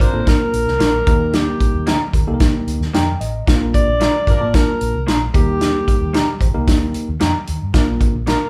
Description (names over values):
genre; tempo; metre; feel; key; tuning
uptempo 1960s-style soul; 112 BPM; 4/4; straight; unclear; A4 = 440 Hz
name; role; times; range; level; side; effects
warm alto saxophone; melody; 0.0-8.5 s; G4 to D5; -22 LUFS; equal; none
vibraphone with hard mallets; second line; 0.0-8.5 s; G3 to D4; -36 LUFS; equal; none
warm horn section; second line; 0.0-7.9 s; F3 to Bb4; -32 LUFS; equal; none
tine electric piano; accompaniment; 0.0-8.1 s; Bb3 to A5; -26 LUFS; equal; none
vintage muted fingered electric bass; bass; 0.0-8.3 s; G1 to G2; -25 LUFS; equal; none
natural country drum kit; drums; 0.0-8.4 s; hi-hat, kick drum, snare drum; -19 LUFS; equal; none
electric guitar through a small old amp; stabs; 0.8-8.4 s; Bb3 to Bb4; -27 LUFS; equal; none
room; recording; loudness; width
light reverb; band playing live in one room; -17 LUFS; mono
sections
0.0-8.5 A section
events
tine electric piano fill 2.7-3.5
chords
0.0 Bb; 1.1 Eb; 3.5 Bb; 5.3 Eb; 7.7 Bb